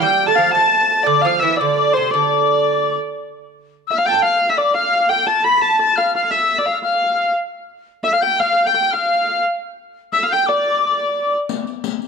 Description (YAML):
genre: medieval dance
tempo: 115 BPM (dotted quarters)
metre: 6/8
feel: straight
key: D dorian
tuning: A4 = 437 Hz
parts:
  - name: dark hurdy-gurdy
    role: melody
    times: 0.0-11.3 s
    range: C5 to B5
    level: -16 LUFS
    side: equal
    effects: none
  - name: lute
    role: second line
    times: 0.0-3.0 s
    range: C3 to A3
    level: -20 LUFS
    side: right 14 dB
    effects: none
  - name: soprano recorder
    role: second line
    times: 0.0-11.3 s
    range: C6 to B6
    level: -20 LUFS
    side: left 10 dB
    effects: none
  - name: riq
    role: percussion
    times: 11.5-12.1 s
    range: none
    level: -23 LUFS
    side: left 15 dB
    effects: none
room: moderate echo chamber reverb, RT60 1.7 s, small room ambience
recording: 1960s-style stereo with parts hard left and right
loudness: -14 LUFS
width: side -5 dB against mid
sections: 0.0-3.2 A section; 3.2-11.5 B section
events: none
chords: none